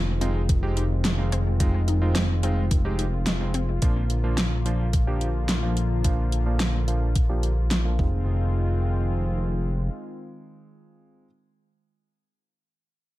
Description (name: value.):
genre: synthwave.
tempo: 108 BPM.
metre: 4/4.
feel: straight.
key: F dorian.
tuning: A4 = 438 Hz.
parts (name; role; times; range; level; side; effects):
warm analog pad; sustained chords; 0.0-11.2 s; D3 to F4; -32 LUFS; left 2 dB; chorus, sidechain pumping.
analog pluck; arpeggios; 0.0-3.7 s; Eb3 to Eb4; -35 LUFS; left 3 dB; chorus, cassette tape, ping-pong delay.
fat analog bass; bass; 0.0-9.9 s; F1 to Bb1; -24 LUFS; equal; tube saturation.
warm electric grand piano; stabs; 0.2-11.2 s; F3 to G4; -33 LUFS; right 2 dB; low-pass filter, ping-pong delay.
pop drum kit; drums; 0.2-7.8 s; hi-hat, snare drum; -28 LUFS; equal; overdrive, gated reverb.
electronic kick drum; drums; 0.5-8.1 s; none; -23 LUFS; equal; overdrive.
room: little or no reverb.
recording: none.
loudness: -22 LUFS.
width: side -16 dB against mid.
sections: 0.0-8.3 A section; 8.3-10.5 B section.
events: filter sweep on analog synth bass 0.0-8.3; filter sweep on electric grand piano 0.0-8.3.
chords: 0.0 Fm7; 3.8 Bb; 8.0 Fm7.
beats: 0.49 1.04 | 1.60 2.16 2.71 3.27 | 3.82 4.38 4.93 5.49 | 6.04 6.60 7.16 7.71 | 8.27 8.82 9.38 9.93.